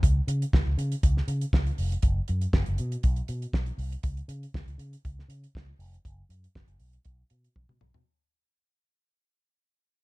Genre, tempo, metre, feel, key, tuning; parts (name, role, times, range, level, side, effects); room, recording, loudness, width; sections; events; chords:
disco; 120 BPM; 4/4; straight; A4 = 440 Hz
fingered electric bass with an envelope filter; bass; 0.0-8.0 s; E#1 to C#3; -28 LUFS; equal
damped 70s drum kit; drums; 0.0-8.1 s; hi-hat, kick drum, snare drum, toms; -25 LUFS; equal
little or no reverb; dark, warm production; -25 LUFS; side -22 dB against mid
0.0-8.1 A section
fade-out 0.0-8.1; drum fill 7.6-8.1